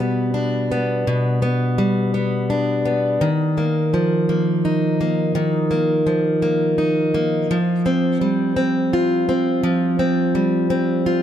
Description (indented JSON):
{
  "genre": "pop",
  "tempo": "56 BPM (dotted quarters)",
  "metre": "6/8",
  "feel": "straight",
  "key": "unclear",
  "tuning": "A4 = 440 Hz",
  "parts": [
    { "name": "fingerpicked plugged-in steel-string acoustic guitar", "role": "solo", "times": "0.0-11.2 s", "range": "B2 to F4", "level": "-17 LUFS", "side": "equal", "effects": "ping-pong delay" }
  ],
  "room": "moderate echo chamber reverb, RT60 2.1 s",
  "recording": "none",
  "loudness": "-17 LUFS",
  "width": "side -10 dB against mid",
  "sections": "0.0-11.2 A section",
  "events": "none",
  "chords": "0.0 G/B; 3.2 Ebsus2; 7.5 Fsus2"
}